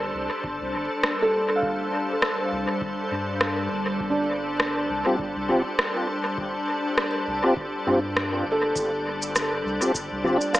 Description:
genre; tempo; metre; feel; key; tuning
ambient dub; 101 BPM; 4/4; swing 56% on 16ths; unclear; A4 = 440 Hz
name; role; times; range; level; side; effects
soft additive organ-like pad; sustained chords; 0.0-10.6 s; G3 to C5; -27 LUFS; left 1 dB; ensemble chorus, built-in reverb
felt-muted upright piano; arpeggios; 0.0-10.6 s; D4 to F5; -28 LUFS; right 1 dB; low-pass filter, dub echo
soft dub sub bass; bass; 0.0-10.4 s; G1 to G2; -35 LUFS; equal; none
electronic kick drum; drums; 0.4-10.1 s; none; -38 LUFS; equal; none
electronic rim click and cabasa; drums; 1.0-10.6 s; none; -27 LUFS; equal; dub echo
tonewheel organ; stabs; 5.1-10.4 s; C4 to G4; -25 LUFS; equal; chorus vibrato, slow rotary speaker, dub echo
room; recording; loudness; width
moderate plate reverb, RT60 2.0 s; echo-heavy mix, small speaker sound; -22 LUFS; side -15 dB against mid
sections
0.0-10.6 A section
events
filter sweep on felt piano 0.0-10.6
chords
0.0 G7sus4

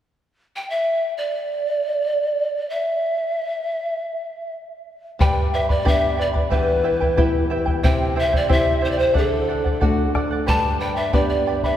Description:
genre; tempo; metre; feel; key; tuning
andean folk, Andean ensemble; 91 BPM; 2/4; straight; unclear; A4 = 440 Hz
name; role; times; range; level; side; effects
breathy mellow pan flute; melody; 0.6-11.8 s; A4 to A5; -22 LUFS; equal; none
charango; accompaniment; 5.2-11.8 s; E4 to B5; -25 LUFS; right 2 dB; none
nylon-string guitar; accompaniment; 5.2-11.8 s; E2 to G4; -25 LUFS; left 2 dB; none
bombo; percussion; 5.2-11.8 s; none; -21 LUFS; left 1 dB; none
room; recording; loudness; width
wet church reverb, RT60 3.4 s; recorded in a church or concert hall; -18 LUFS; side -11 dB against mid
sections
0.0-5.2 A section; 5.2-11.8 B section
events
none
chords
0.0 N.C.; 5.2 G; 6.5 Em; 7.8 C; 9.2 D; 10.5 G

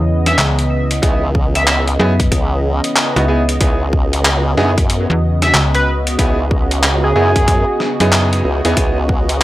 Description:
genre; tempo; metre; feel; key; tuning
glitch hop; 93 BPM; 4/4; swing 63% on 16ths; C# minor; A4 = 440 Hz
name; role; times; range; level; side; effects
warm analog pad; sustained chords; 0.0-9.4 s; C#3 to D#5; -21 LUFS; equal; chorus, sidechain pumping
slap-like FM bass; bass; 0.0-8.4 s; C#2 to F#2; -15 LUFS; equal; none
sync lead; melody; 0.3-7.9 s; G#4 to E5; -19 LUFS; equal; chorus, analog delay
boom bap sampler-style drum kit; drums; 0.3-9.4 s; handclaps, hi-hat, snare drum; -17 LUFS; equal; none
bright concert grand piano; stabs; 1.0-9.0 s; B3 to G#4; -20 LUFS; right 2 dB; sidechain pumping, analog delay
formant-sweep wobble bass; bass; 1.0-9.4 s; C#2 to F#2; -17 LUFS; equal; chorus
electronic kick drum; drums; 1.0-9.3 s; none; -16 LUFS; equal; none
room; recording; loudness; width
digital ambience; dry, gritty hardware recording; -12 LUFS; side -16 dB against mid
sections
0.0-9.4 A section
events
none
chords
0.0 C#m9

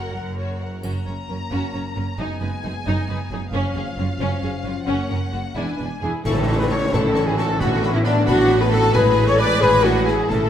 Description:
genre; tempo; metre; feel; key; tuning
cinematic, heroic adventure film score; 89 BPM (dotted quarters); 6/8; straight; F# major, A major from 6.3 s; A4 = 442 Hz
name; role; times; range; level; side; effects
warm symphonic violin section; melody; 0.0-10.4 s; E#5 to C#6; -34 LUFS; left 4 dB; none
warm symphonic violin section; second line; 0.0-10.5 s; C#4 to F#5; -29 LUFS; left 2 dB; none
rich studio viola section; accompaniment; 0.0-10.5 s; D3 to B4; -28 LUFS; equal; none
clear symphonic cello section; bass; 0.0-10.5 s; E2 to A2; -27 LUFS; right 3 dB; none
rich symphonic double bass section; bass; 0.0-10.5 s; E1 to A1; -25 LUFS; right 2 dB; none
mellow French horn section; sustained chords; 0.8-10.5 s; E#3 to D5; -24 LUFS; left 4 dB; none
triangle and tam-tam; percussion; 0.8-1.7, 6.3-8.0 s; none; -29 LUFS; left 2 dB; none
mellow hollow silver concert flute; second line; 6.0-10.5 s; D5 to D6; -27 LUFS; left 2 dB; none
clear trumpet section; stabs; 6.0-10.5 s; D4 to D5; -26 LUFS; right 1 dB; none
dark trombone section; sustained chords; 6.2-10.5 s; D3 to C#4; -28 LUFS; right 1 dB; none
concert snare drum, clash cymbals and concert bass drum; drums; 6.3-10.5 s; none; -27 LUFS; equal; none
clear clarinet; second line; 6.9-10.5 s; C#4 to E4; -32 LUFS; equal; none
room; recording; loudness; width
moderate scoring stage reverb, RT60 1.7 s; none; -18 LUFS; side -9 dB against mid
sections
0.8-6.3 A section; 6.3-10.5 B section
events
band accent 6.3-6.7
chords
0.0 F#; 2.2 G#m/F#; 3.5 C#/F#; 4.9 F#; 5.6 E7; 6.3 A; 7.6 Bm/A

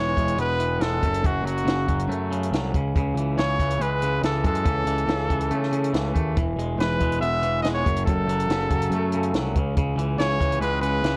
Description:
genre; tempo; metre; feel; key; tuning
indie rock; 141 BPM; 4/4; straight; unclear; A4 = 441 Hz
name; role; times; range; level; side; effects
bright trumpet; melody; 0.0-11.2 s; F#4 to E5; -28 LUFS; equal; slapback echo
twangy electric guitar; riff; 0.0-11.2 s; F#2 to B3; -31 LUFS; equal; none
fuzz picked electric bass; bass; 0.0-11.2 s; E1 to C#3; -28 LUFS; equal; overdrive, transformer saturation
compact cocktail drum kit; drums; 0.2-11.1 s; hi-hat, kick drum, snare drum; -29 LUFS; equal; none
room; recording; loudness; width
light reverb; worn, warbling old tape, cassette tape, warbly pitch drift; -24 LUFS; mono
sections
0.0-11.2 A section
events
none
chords
0.0 E; 1.0 F#m; 2.7 C#m; 4.7 A/C#; 6.4 E; 7.9 F#m; 9.6 C#m

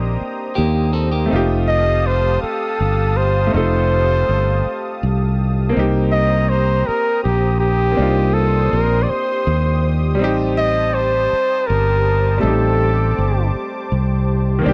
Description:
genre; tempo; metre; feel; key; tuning
slow six-eight R&B; 54 BPM (dotted quarters); 6/8; straight; C dorian; A4 = 440 Hz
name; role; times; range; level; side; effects
clear grand piano; accompaniment; 0.0-14.7 s; Eb3 to A4; -25 LUFS; equal; none
warm analog pad; sustained chords; 0.0-14.7 s; G4 to Eb6; -30 LUFS; equal; chorus
fretless electric bass; bass; 0.0-14.7 s; F1 to Eb2; -20 LUFS; equal; subtle chorus
clean electric guitar; second line; 0.6-1.5 s; Bb3 to A4; -25 LUFS; equal; none
warm flugelhorn; melody; 1.7-13.5 s; G4 to Eb5; -21 LUFS; equal; none
room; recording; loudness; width
little or no reverb; dry, close 1970s-style studio recording; -17 LUFS; mono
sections
0.0-5.7 A section; 5.7-14.7 A section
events
none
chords
0.0 Cm7; 1.3 F9; 5.7 Cm7; 10.2 Am7b5

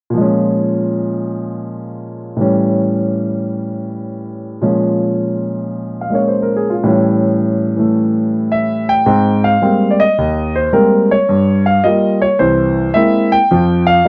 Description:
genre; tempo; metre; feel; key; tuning
solo jazz; 108 BPM; 4/4; swing 68% on 8ths; unclear; A4 = 440 Hz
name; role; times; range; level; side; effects
warm grand piano; solo; 0.1-14.1 s; C2 to G5; -15 LUFS; equal; none
room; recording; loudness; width
moderate club reverb, RT60 0.5 s; nothing above 7.8 kHz; -15 LUFS; mono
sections
0.2-9.1 A section; 9.1-14.1 B section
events
none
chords
0.2 Bbm7; 2.4 A7; 4.6 Bbm7; 6.8 A7; 9.1 Abmaj9; 11.3 Gm7b5; 12.4 C7b13; 13.5 Fsus2

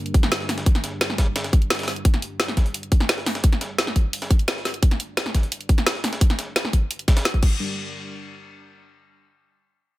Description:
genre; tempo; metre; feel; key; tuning
dark technical drum and bass; 173 BPM; 4/4; straight; G minor; A4 = 439 Hz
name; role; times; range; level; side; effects
dark analog pad; sustained chords; 0.0-7.6 s; G3 to D5; -36 LUFS; equal; chorus, sidechain pumping
breakbeat sampler-style drum kit; drums; 0.1-7.4 s; hi-hat, snare drum; -31 LUFS; equal; high-pass filter on hats, high-pass filter on snare
drum and bass drum kit; drums; 0.1-7.5 s; crash cymbal, hi-hat, snare drum; -24 LUFS; equal; none
electronic kick drum; drums; 0.1-7.5 s; none; -18 LUFS; equal; none
room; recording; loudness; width
little or no reverb; dense, heavily limited modern master; -19 LUFS; side -17 dB against mid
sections
0.0-7.6 A section; 7.6-9.0 B section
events
filter sweep on analog synth pad 0.0-7.6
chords
0.0 Gm; 7.6 N.C.

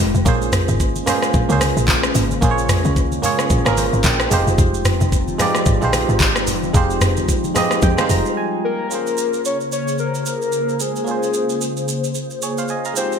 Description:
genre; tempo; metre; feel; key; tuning
amapiano; 111 BPM; 4/4; swing 58% on 16ths; Bb minor; A4 = 441 Hz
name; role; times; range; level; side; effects
barking FM electric piano; accompaniment; 0.0-13.2 s; G3 to Bb5; -21 LUFS; right 2 dB; chorus
hollow soft pad; sustained chords; 0.0-13.2 s; Db3 to C5; -25 LUFS; left 1 dB; ensemble chorus, sidechain pumping
woody log drum bass; bass; 0.0-8.2 s; F1 to F2; -20 LUFS; equal; none
smooth R&B drum kit; drums; 0.1-13.2 s; handclaps, hi-hat, kick drum, rim click, shaker, toms; -19 LUFS; equal; gated reverb
congas; percussion; 0.1-8.2 s; none; -29 LUFS; left 2 dB; none
soft octave-layered synth lead; melody; 8.6-13.2 s; Ab4 to Db5; -22 LUFS; left 4 dB; chorus, ping-pong delay
room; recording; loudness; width
moderate lush hall reverb, RT60 1.6 s; bright 1980s-style digital production; -16 LUFS; side -7 dB against mid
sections
0.0-8.9 A section; 8.9-13.2 B section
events
drop 0.0-8.9; FM electric piano fill 3.5-4.6, 7.3-8.9; break 8.4-8.9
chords
0.3 Bbm9; 4.3 Fm9; 8.9 Bbm9

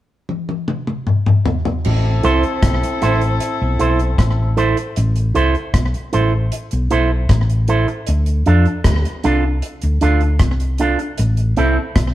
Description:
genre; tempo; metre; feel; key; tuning
roots reggae; 77 BPM; 4/4; straight; A minor; A4 = 440 Hz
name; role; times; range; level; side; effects
deep reggae drum kit; drums; 0.3-12.1 s; crash cymbal, hi-hat, kick drum, rim click, toms; -18 LUFS; left 1 dB; slapback echo
warm horn section; second line; 1.8-4.5 s; C4 to A4; -22 LUFS; left 2 dB; none
hollow-body short-scale fingered electric bass; bass; 1.9-12.1 s; A1 to F2; -16 LUFS; equal; none
electric guitar with an envelope filter; accompaniment; 2.2-11.8 s; C4 to C5; -19 LUFS; right 4 dB; none
room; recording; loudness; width
moderate stone room reverb, RT60 1.4 s; band playing live in one room; -14 LUFS; side -14 dB against mid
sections
0.0-1.8 A section; 1.8-5.0 B section; 5.0-12.1 C section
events
drum fill 0.3-1.8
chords
0.0 N.C.; 1.8 Am; 8.1 Dm; 11.2 Am

